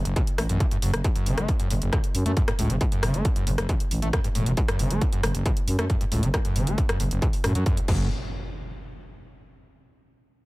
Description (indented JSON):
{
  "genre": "driving peak-time techno",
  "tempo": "136 BPM",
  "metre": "4/4",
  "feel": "straight",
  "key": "F# minor",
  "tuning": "A4 = 442 Hz",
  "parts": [
    { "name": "growling FM bass", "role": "bass", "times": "0.0-8.1 s", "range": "E1 to F#2", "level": "-25 LUFS", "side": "equal", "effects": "sidechain pumping" },
    { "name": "screaming distorted acid line", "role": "riff", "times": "0.1-8.1 s", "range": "F#1 to A3", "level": "-29 LUFS", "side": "equal", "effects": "distortion, wide subtle chorus, cassette tape, sidechain pumping, tape echo" },
    { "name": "techno drum kit", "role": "drums", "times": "0.1-8.0 s", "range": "crash cymbal, hi-hat, rim click", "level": "-30 LUFS", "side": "equal", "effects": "overdrive" },
    { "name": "electronic kick drum", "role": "drums", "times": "0.2-8.0 s", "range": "none", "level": "-24 LUFS", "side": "equal", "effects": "distortion, overdrive" },
    { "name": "impact", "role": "sound effects", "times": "7.9-9.6 s", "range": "none", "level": "-36 LUFS", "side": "equal", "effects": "none" }
  ],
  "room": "digital ambience",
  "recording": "none",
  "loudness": "-22 LUFS",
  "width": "side -21 dB against mid",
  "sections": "0.0-8.1 A section; 8.1-9.9 B section",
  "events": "none",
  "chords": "0.0 F#m; 7.9 N.C."
}